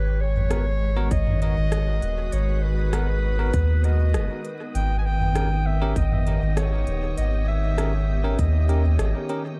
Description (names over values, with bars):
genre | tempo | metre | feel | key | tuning
ambient dub | 99 BPM | 4/4 | straight | unclear | A4 = 440 Hz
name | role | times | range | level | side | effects
clear clarinet | melody | 0.0-9.3 s | B4 to G#5 | -33 LUFS | equal | dub echo
soft additive organ-like pad | sustained chords | 0.0-9.6 s | D#3 to C#5 | -35 LUFS | equal | ensemble chorus, built-in reverb, vintage 12-bit sampler grit
soft dub sub bass | bass | 0.0-9.1 s | D#1 to D#2 | -24 LUFS | equal | none
wind-like tuned noise texture | texture | 2.1-9.6 s | B3 to D#6 | -42 LUFS | equal | built-in reverb
organic electronic drum kit | drums | 0.4-9.4 s | hi-hat, rim click, toms | -34 LUFS | equal | dub echo
bell-like tine electric piano | stabs | 0.5-9.4 s | B3 to A#4 | -36 LUFS | equal | dub echo
electronic kick drum | drums | 1.1-8.5 s | none | -27 LUFS | equal | none
room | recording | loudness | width
little or no reverb | dark, warm production, vinyl crackle | -23 LUFS | mono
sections
0.0-9.6 A section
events
none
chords
0.0 G#m7; 4.7 D#7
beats
0.51 1.11 1.72 | 2.33 2.93 3.54 4.14 | 4.75 5.36 5.96 6.57 | 7.17 7.78 8.39 8.99 | 9.60